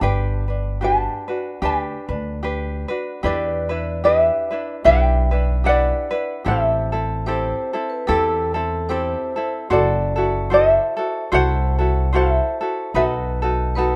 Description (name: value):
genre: Hawaiian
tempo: 74 BPM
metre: 4/4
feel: swing 58% on 8ths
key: G major, E minor from 3.2 s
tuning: A4 = 440 Hz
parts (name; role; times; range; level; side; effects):
- tenor ukulele; melody; 0.0-14.0 s; A4 to A5; -22 LUFS; equal; none
- tenor ukulele; accompaniment; 0.0-14.0 s; C4 to C5; -26 LUFS; equal; none
- upright bass; bass; 0.0-14.0 s; F#1 to E2; -25 LUFS; equal; none
- vibraphone with medium hard mallets; second line; 7.3-14.0 s; A4 to C5; -28 LUFS; equal; none
room: light reverb, studio ambience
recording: rough home demo mix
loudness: -20 LUFS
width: mono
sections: 0.0-3.2 A section; 3.2-14.0 B section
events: none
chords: 0.0 Gmaj7; 3.2 Em7; 6.5 Am7; 9.7 F#m7b5; 12.9 B7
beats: | 0.01 0.82 1.63 2.43 | 3.24 4.04 4.85 5.66 | 6.47 7.27 8.08 8.89 | 9.70 10.51 11.32 12.14 | 12.95 13.76